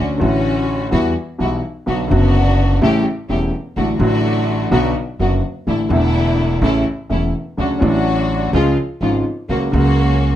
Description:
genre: tango.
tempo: 126 BPM.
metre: 4/4.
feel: rubato.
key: D major.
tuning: A4 = 440 Hz.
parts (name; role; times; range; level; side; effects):
warm concert grand piano; accompaniment; 0.0-10.4 s; E1 to F#4; -17 LUFS; left 1 dB; none.
bright studio string section; stabs; 0.0-10.4 s; G3 to G4; -23 LUFS; left 1 dB; none.
upright bass; bass; 0.0-10.4 s; E1 to E2; -19 LUFS; right 1 dB; none.
room: moderate studio reverb, RT60 0.6 s.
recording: none.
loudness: -15 LUFS.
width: side -12 dB against mid.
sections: 0.0-10.4 A section.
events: none.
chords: 0.0 Dmaj7; 0.9 Emadd9; 1.9 Bm; 2.8 A7; 3.8 D/A; 4.7 Bm; 5.7 Asus4; 6.6 A; 7.6 Dmaj7; 8.5 C#; 9.5 F#/C#.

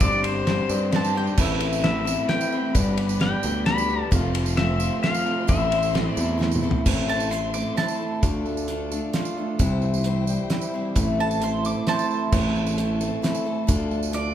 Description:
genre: folk rock and heartland rock.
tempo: 132 BPM.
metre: 3/4.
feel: straight.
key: A minor.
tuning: A4 = 440 Hz.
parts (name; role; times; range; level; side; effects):
pedal steel guitar; melody; 0.0-6.4 s; C5 to B5; -27 LUFS; left 3 dB; none.
picked steel-string acoustic guitar; accompaniment; 0.0-14.3 s; A2 to C5; -30 LUFS; left 7 dB; none.
warm studio string section; sustained chords; 0.0-14.3 s; E4 to C6; -38 LUFS; left 2 dB; none.
electric guitar through a small old amp; riff; 0.0-14.3 s; F2 to G4; -28 LUFS; right 2 dB; none.
picked electric bass; bass; 0.0-14.3 s; F1 to G2; -26 LUFS; equal; none.
damped 70s drum kit; drums; 0.0-14.2 s; crash cymbal, hi-hat, kick drum, ride cymbal, snare drum, toms; -25 LUFS; equal; none.
tambourine; percussion; 0.0-14.1 s; none; -38 LUFS; right 9 dB; none.
mandolin; second line; 1.0-1.7, 7.1-9.1, 11.2-14.3 s; C5 to D6; -28 LUFS; right 6 dB; none.
room: moderate recital hall reverb, RT60 1.4 s.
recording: recorded in a church or concert hall.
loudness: -21 LUFS.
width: side -10 dB against mid.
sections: 0.0-6.9 A section; 6.9-14.3 B section.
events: drum fill 6.4-6.9; mandolin solo 6.9-14.3.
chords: 0.0 Csus2/G; 1.4 Amadd9; 2.8 G; 4.1 F; 5.5 Am; 8.2 Dm; 9.6 C; 11.0 Am; 13.7 Dm.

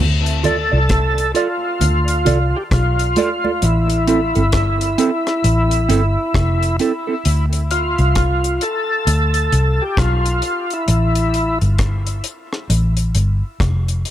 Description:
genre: dub reggae.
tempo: 66 BPM.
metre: 4/4.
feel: swing 62% on 16ths.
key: D dorian.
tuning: A4 = 441 Hz.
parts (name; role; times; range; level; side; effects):
vintage muted fingered electric bass; bass; 0.0-14.0 s; F1 to D2; -16 LUFS; equal; none.
deep reggae drum kit; drums; 0.3-14.1 s; hi-hat, kick drum, rim click; -22 LUFS; left 1 dB; none.
mellow electric guitar; accompaniment; 0.4-7.1 s; C4 to D5; -22 LUFS; right 6 dB; tremolo, high-pass filter, tape echo.
congas; percussion; 0.4-3.6 s; none; -26 LUFS; right 4 dB; high-pass filter on perc, tape echo.
overdriven tonewheel organ; melody; 0.5-11.6 s; E4 to A4; -20 LUFS; equal; chorus vibrato, slow rotary speaker, tape echo.
room: small room ambience.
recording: none.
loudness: -15 LUFS.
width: side -12 dB against mid.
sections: 0.0-14.1 A section.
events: part muted 3.6-14.1.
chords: 0.0 Dm; 3.6 Am; 7.2 Dm; 10.9 Fmaj9.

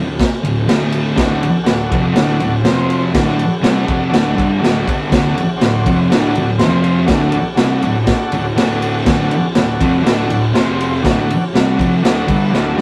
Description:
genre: garage rock duo or trio.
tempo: 122 BPM.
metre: 4/4.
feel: straight.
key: D mixolydian.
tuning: A4 = 442 Hz.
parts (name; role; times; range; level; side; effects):
thick fuzz guitar; riff; 0.0-12.8 s; D2 to C4; -18 LUFS; equal; distortion.
raw garage drum kit; drums; 0.2-12.8 s; kick drum, ride cymbal, snare drum; -19 LUFS; equal; none.
combo organ; sustained chords; 1.1-12.8 s; C4 to C5; -25 LUFS; equal; none.
room: moderate studio reverb, RT60 0.6 s.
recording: rough rehearsal-room recording.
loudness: -15 LUFS.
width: mono.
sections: 0.0-5.1 A section; 5.1-12.8 A section.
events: drum fill 12.5.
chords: 0.0 D; 2.6 F5; 3.1 D; 6.6 F5; 7.1 D; 10.5 F5; 11.0 D.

